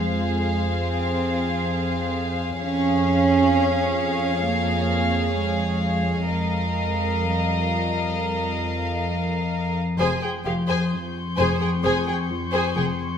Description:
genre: cinematic.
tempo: 65 BPM.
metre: 4/4.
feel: straight.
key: F minor.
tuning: A4 = 437 Hz.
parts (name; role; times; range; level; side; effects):
rich studio violin section; melody; 0.0-12.8 s; F5 to Ab5; -29 LUFS; left 2 dB; none.
warm studio violin section; second line; 0.0-12.8 s; G4 to Eb5; -27 LUFS; left 2 dB; none.
dark studio cello section; bass; 0.0-12.8 s; F2 to Db4; -26 LUFS; right 3 dB; none.
warm studio double bass section; bass; 0.0-12.9 s; F1 to F2; -29 LUFS; right 2 dB; none.
analog drone; drone; 0.0-13.2 s; F2; -28 LUFS; left 2 dB; chorus.
rich studio viola section; accompaniment; 10.0-12.8 s; Ab4; -28 LUFS; right 1 dB; none.
dark studio cello section; riff; 10.0-13.0 s; F2 to F3; -31 LUFS; left 1 dB; none.
rich studio violin section; texture; 10.0-13.2 s; C6 to G6; -34 LUFS; left 3 dB; none.
room: moderate scoring stage reverb, RT60 1.7 s.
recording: none.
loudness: -20 LUFS.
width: side -8 dB against mid.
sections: 0.0-10.0 A section; 10.0-13.2 B section.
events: none.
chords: 0.0 Fm; 2.6 Db/F; 6.3 Ebadd9/F; 10.0 Fmadd9.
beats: 0.76 1.69 | 2.61 3.53 4.46 5.38 | 6.30 7.22 8.15 9.07 | 9.99 10.92 11.84 12.76.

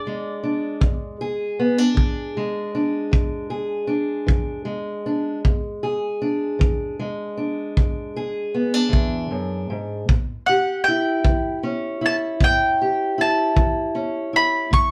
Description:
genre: acoustic country blues, solo or duo.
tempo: 52 BPM (dotted quarters).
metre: 12/8.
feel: straight.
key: E mixolydian.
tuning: A4 = 438 Hz.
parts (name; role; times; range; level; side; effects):
mandolin; melody; 0.0-1.2, 10.5-14.9 s; D5 to C#6; -23 LUFS; equal; none.
fingerpicked steel-string acoustic guitar; accompaniment; 0.0-14.9 s; E2 to G#4; -25 LUFS; equal; none.
kick drum; drums; 0.8-14.9 s; none; -22 LUFS; equal; none.
room: wet studio reverb, RT60 0.5 s.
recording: heard from further back in the room.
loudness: -22 LUFS.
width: mono.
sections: 0.0-14.9 A section.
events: none.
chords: 0.0 E7; 10.1 A7.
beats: | 0.81 1.97 3.13 4.29 | 5.44 6.60 7.76 8.92 | 10.08 11.24 12.40 13.56 | 14.72.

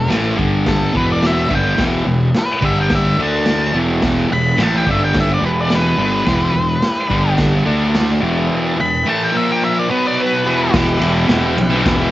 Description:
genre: garage rock duo or trio.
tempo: 107 BPM.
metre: 4/4.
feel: straight.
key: E minor.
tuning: A4 = 445 Hz.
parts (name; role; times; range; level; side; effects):
octave-fuzz lead guitar; melody; 0.0-10.7 s; A4 to B5; -19 LUFS; left 1 dB; distortion.
thick fuzz guitar; riff; 0.0-12.1 s; E2 to D4; -17 LUFS; equal; distortion.
fuzz fingered electric bass; bass; 0.0-12.1 s; E1 to D2; -19 LUFS; equal; overdrive.
raw garage drum kit; drums; 0.1-12.0 s; crash cymbal, kick drum, ride cymbal, snare drum; -21 LUFS; equal; cassette tape.
overdriven combo organ; sustained chords; 1.8-12.1 s; A#3 to D5; -26 LUFS; equal; spring reverb.
room: light reverb.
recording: home recording on cassette, nothing above 7.7 kHz.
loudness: -13 LUFS.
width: side -15 dB against mid.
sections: 0.0-10.7 A section; 10.7-12.1 B section.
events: lead electric guitar solo 0.0-10.7.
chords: 0.4 G5; 0.9 Em; 2.6 G5; 3.2 D5; 3.7 Em; 4.9 G5; 5.4 Em; 7.1 G5; 7.7 D5; 8.2 Em; 9.3 A#5; 9.9 B5; 10.5 Em.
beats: 0.10 0.66 1.22 | 1.78 2.34 2.90 3.46 | 4.02 4.58 5.14 5.70 | 6.26 6.82 7.38 7.94 | 8.50 9.06 9.62 10.18 | 10.74 11.29 11.85.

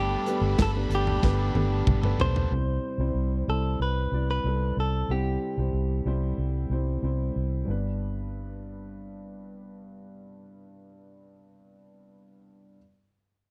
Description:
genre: piano-driven pop.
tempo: 93 BPM.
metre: 4/4.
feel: straight.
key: G major.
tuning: A4 = 439 Hz.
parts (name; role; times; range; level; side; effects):
direct-recorded clean electric guitar; melody; 0.0-7.0 s; G4 to C5; -34 LUFS; equal; none.
warm symphonic violin section; second line; 0.0-2.5 s; A4 to B5; -41 LUFS; equal; none.
warm baby grand piano; accompaniment; 0.0-12.8 s; G2 to F#5; -36 LUFS; equal; none.
cranked stack guitar; riff; 0.0-2.5 s; G3 to A4; -39 LUFS; equal; overdrive.
vintage muted fingered electric bass; bass; 0.0-11.7 s; G1 to C2; -30 LUFS; equal; none.
modern studio drum kit; drums; 0.3-2.5 s; hi-hat, kick drum, snare drum, toms; -28 LUFS; equal; none.
room: little or no reverb.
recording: dry, close 1970s-style studio recording.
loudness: -27 LUFS.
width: mono.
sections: 0.0-2.5 A section; 2.5-7.7 B section; 7.7-10.3 C section.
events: drum fill 1.2-2.5.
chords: 0.0 Gadd9; 2.5 C; 7.7 G.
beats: 0.59 1.23 1.88 | 2.52 3.16 3.81 4.45 | 5.10 5.74 6.39 7.03 | 7.68 8.33 8.97 9.62.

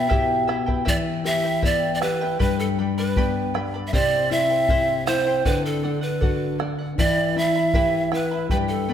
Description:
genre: andean folk, Andean ensemble.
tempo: 79 BPM.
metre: 2/4.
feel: straight.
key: E minor.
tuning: A4 = 440 Hz.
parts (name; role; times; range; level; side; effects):
breathy pan flute; melody; 0.0-8.9 s; A4 to E5; -23 LUFS; right 2 dB; none.
charango; accompaniment; 0.0-8.9 s; E4 to B5; -28 LUFS; right 2 dB; none.
nylon-string guitar; accompaniment; 0.0-8.9 s; G2 to G4; -25 LUFS; left 4 dB; none.
bombo; percussion; 0.1-8.7 s; none; -26 LUFS; equal; none.
room: wet recital hall reverb, RT60 1.8 s.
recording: none.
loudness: -19 LUFS.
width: side -9 dB against mid.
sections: 0.9-8.9 A section.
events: none.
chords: 0.0 Em; 2.4 G; 3.9 C; 5.5 D; 7.0 Em.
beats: 0.12 | 0.88 1.65 | 2.41 3.17 | 3.94 4.70 | 5.46 6.22 | 6.98 7.74 | 8.51.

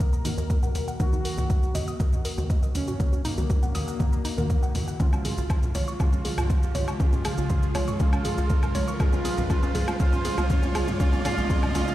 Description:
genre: melodic techno.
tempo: 120 BPM.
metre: 4/4.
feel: straight.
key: unclear.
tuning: A4 = 443 Hz.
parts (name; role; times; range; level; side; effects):
analog synth brass; melody; 0.0-11.9 s; Bb3 to Bb4; -33 LUFS; right 2 dB; chorus, sidechain pumping, dub echo.
evolving wavetable pad; sustained chords; 0.0-11.9 s; Db3 to Gb4; -37 LUFS; left 1 dB; phaser, built-in reverb, sidechain pumping.
tight sequencer bass; bass; 0.0-11.8 s; Cb2 to Eb2; -30 LUFS; equal; sidechain pumping.
deep house drum kit; drums; 0.0-11.9 s; hi-hat, shaker, toms, woodblock; -32 LUFS; equal; overdrive.
electronic kick drum; drums; 0.0-11.6 s; none; -23 LUFS; equal; overdrive.
riser; sound effects; 1.6-11.9 s; none; -40 LUFS; right 1 dB; none.
woody wave-folded pluck; arpeggios; 0.1-11.9 s; Db4 to Eb6; -35 LUFS; equal; chorus, sidechain pumping, dub echo.
synth brass stab; stabs; 0.2-11.9 s; Db3 to Gb4; -34 LUFS; left 1 dB; chorus, sidechain pumping.
room: light reverb.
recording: played on a big sound system in a bare room, stone room reverb.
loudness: -22 LUFS.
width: side -14 dB against mid.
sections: 0.0-11.9 A section.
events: build-up 0.0-11.9; drum fill 0.0-11.9; filter sweep on synth pluck 0.0-11.9; filter sweep on analog polysynth 0.0-11.9; filter sweep on synth stab 0.0-11.9; filter sweep on ambient pad 0.0-11.9; riser 1.6-11.9.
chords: 0.0 Ebm; 5.0 Db.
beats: 0.00 0.50 | 1.00 1.50 2.00 2.50 | 3.00 3.50 4.00 4.50 | 5.00 5.50 6.00 6.50 | 7.00 7.50 8.00 8.50 | 9.00 9.50 10.00 10.50 | 11.00 11.50.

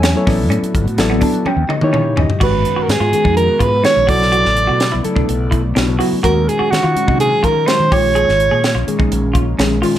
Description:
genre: electric jazz fusion.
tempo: 126 BPM.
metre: 4/4.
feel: straight.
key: G# dorian.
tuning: A4 = 441 Hz.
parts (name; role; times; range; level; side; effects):
bright reed electric piano; accompaniment; 0.0-10.0 s; A#2 to A5; -19 LUFS; left 2 dB; none.
airy breathy pad; sustained chords; 0.0-10.0 s; B2 to E5; -27 LUFS; equal; none.
clean electric guitar; stabs; 0.0-10.0 s; B3 to G#4; -22 LUFS; right 2 dB; lush chorus, slapback echo.
fretless electric bass; bass; 0.0-10.0 s; G1 to D#3; -18 LUFS; equal; none.
crisp fusion drum kit; drums; 0.0-10.0 s; crash cymbal, hi-hat, kick drum, snare drum, toms; -20 LUFS; equal; none.
breathy soprano saxophone; melody; 2.4-8.9 s; F#4 to D5; -14 LUFS; right 2 dB; plate reverb.
room: light reverb.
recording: none.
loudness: -12 LUFS.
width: side -12 dB against mid.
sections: 0.0-2.4 A section; 2.4-10.0 B section.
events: reed electric piano fill 1.0-2.4; drum fill 1.5-2.4.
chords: 0.3 Asus4; 1.5 D#7b9; 2.4 G#m9; 4.1 Bm9; 6.2 D#m9; 7.9 A#m7.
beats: 0.03 | 0.51 0.99 1.46 1.94 | 2.42 2.90 3.37 3.85 | 4.33 4.81 5.29 5.76 | 6.24 6.72 7.20 7.68 | 8.15 8.63 9.11 9.59.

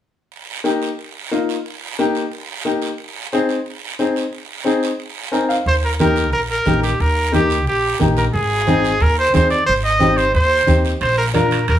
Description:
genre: latin, cumbia.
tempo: 180 BPM.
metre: 4/4.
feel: straight.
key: Eb major.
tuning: A4 = 440 Hz.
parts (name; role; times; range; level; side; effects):
guiro; percussion; 0.3-11.8 s; none; -30 LUFS; right 6 dB; none.
bright upright piano; accompaniment; 0.6-11.6 s; Bb3 to Ab5; -19 LUFS; left 2 dB; none.
clear trumpet; melody; 5.7-11.8 s; G4 to Eb5; -17 LUFS; right 1 dB; plate reverb.
upright bass; bass; 5.7-11.8 s; Ab1 to F2; -20 LUFS; equal; none.
congas; percussion; 5.7-11.8 s; none; -22 LUFS; right 2 dB; none.
timbales; percussion; 11.0-11.8 s; none; -27 LUFS; right 5 dB; none.
room: wet studio reverb, RT60 0.5 s.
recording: heard from further back in the room.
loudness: -15 LUFS.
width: side -11 dB against mid.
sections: 0.3-5.7 A section; 5.7-11.8 B section.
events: upright piano fill 5.2-5.7.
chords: 0.3 Eb; 3.0 Ab; 5.7 Eb; 8.3 Ab; 11.0 Bb.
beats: | 0.32 0.65 0.98 1.32 | 1.65 1.99 2.32 2.66 | 2.99 3.33 3.66 3.99 | 4.33 4.66 5.00 5.33 | 5.67 6.00 6.33 6.67 | 7.00 7.34 7.67 8.00 | 8.34 8.67 9.01 9.34 | 9.68 10.01 10.34 10.68 | 11.01 11.35 11.68.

